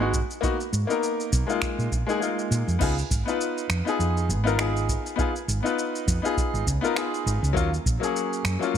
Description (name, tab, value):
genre	sunset chillout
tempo	101 BPM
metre	4/4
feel	swing 57% on 16ths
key	unclear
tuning	A4 = 440 Hz
part	bright grand piano	accompaniment	0.0-8.8 s	Gb3 to Cb5	-26 LUFS	left 3 dB	auto-pan, digital delay
part	woody fretless electric bass	bass	0.0-8.8 s	Ab1 to Bb2	-25 LUFS	right 1 dB	tube saturation
part	deep house drum kit	drums	0.1-8.8 s	crash cymbal, finger snaps, shaker	-32 LUFS	equal	overdrive, small room ambience
part	electronic kick drum	drums	0.1-8.0 s	none	-28 LUFS	right 1 dB	small room ambience
room	light reverb, digital ambience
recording	none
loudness	-23 LUFS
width	side -9 dB against mid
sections	0.0-2.8 A section; 2.8-8.8 B section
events	none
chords	0.4 Abm; 1.6 Bb7sus4; 2.8 Db7 (rootless); 7.6 Ebm7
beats	| 0.43 1.02 1.62 2.21 | 2.80 3.40 3.99 4.59 | 5.18 5.77 6.37 6.96 | 7.56 8.15 8.74